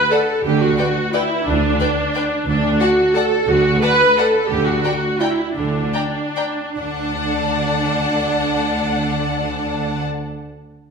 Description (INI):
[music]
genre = classical, orchestral ballroom waltz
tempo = 136-191 BPM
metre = 3/4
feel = rubato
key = D major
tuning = A4 = 440 Hz
[part]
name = rich symphonic viola section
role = accompaniment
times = 0.0-10.0 s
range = D4 to B4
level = -18 LUFS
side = right 1 dB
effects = none
[part]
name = warm symphonic violin section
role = melody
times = 0.1-10.0 s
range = F#5 to Bb5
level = -28 LUFS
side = left 5 dB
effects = none
[part]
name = rich studio violin section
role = second line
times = 0.1-10.0 s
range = B4 to G5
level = -25 LUFS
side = left 3 dB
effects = none
[part]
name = rich symphonic cello section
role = bass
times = 0.4-10.0 s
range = D3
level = -25 LUFS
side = right 4 dB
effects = none
[part]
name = rich symphonic double bass section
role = bass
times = 0.4-10.0 s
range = D2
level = -24 LUFS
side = right 1 dB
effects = none
[sound]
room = wet recital hall reverb, RT60 1.4 s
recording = recorded in a church or concert hall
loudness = -16 LUFS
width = side -5 dB against mid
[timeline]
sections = 0.0-6.8 A section; 6.8-9.3 B section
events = slowing down 4.0-6.8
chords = 0.4 N.C.; 2.5 D; 4.5 N.C.; 6.8 D